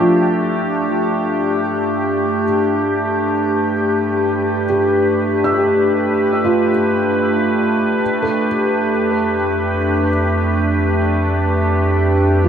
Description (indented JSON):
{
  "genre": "ambient",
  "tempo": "free time",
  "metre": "none",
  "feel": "none",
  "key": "unclear",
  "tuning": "A4 = 441 Hz",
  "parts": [
    { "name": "evolving wavetable pad", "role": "sustained chords", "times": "0.0-12.5 s", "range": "A3 to B4", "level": "-16 LUFS", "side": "equal", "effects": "chorus, built-in reverb, shimmer reverb" },
    { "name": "felt-muted upright piano", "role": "arpeggios", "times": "0.0-12.5 s", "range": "F3 to E6", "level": "-21 LUFS", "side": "equal", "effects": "wide subtle chorus, tape echo, shimmer reverb" },
    { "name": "round analog bass", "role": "bass", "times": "0.0-12.5 s", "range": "F2 to G2", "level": "-23 LUFS", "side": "equal", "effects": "none" }
  ],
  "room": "wet plate reverb, RT60 2.4 s",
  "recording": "dreamy mix soaked in reverb",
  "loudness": "-15 LUFS",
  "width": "side -8 dB against mid",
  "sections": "0.0-12.5 A section",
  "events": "fade-in on analog synth bass 0.0-12.5",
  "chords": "0.0 G7; 8.0 Fmaj7"
}